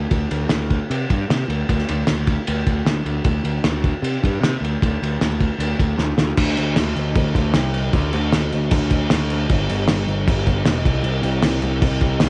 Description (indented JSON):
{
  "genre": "garage rock duo or trio",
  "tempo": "154 BPM",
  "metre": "4/4",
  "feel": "straight",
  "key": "unclear",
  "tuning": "A4 = 441 Hz",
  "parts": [
    { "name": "fuzz picked electric bass", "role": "bass", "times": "0.0-12.3 s", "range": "E1 to C3", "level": "-23 LUFS", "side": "equal", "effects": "overdrive" },
    { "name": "cloth-damped thuddy drum kit", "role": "drums", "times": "0.1-12.3 s", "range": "crash cymbal, kick drum, ride cymbal, snare drum", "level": "-22 LUFS", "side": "equal", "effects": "none" }
  ],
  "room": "little or no reverb",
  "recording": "nothing above 10.7 kHz",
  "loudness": "-20 LUFS",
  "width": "mono",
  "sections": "0.0-6.4 A section; 6.4-12.3 B section",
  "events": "drum fill 6.0-6.4",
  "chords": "none"
}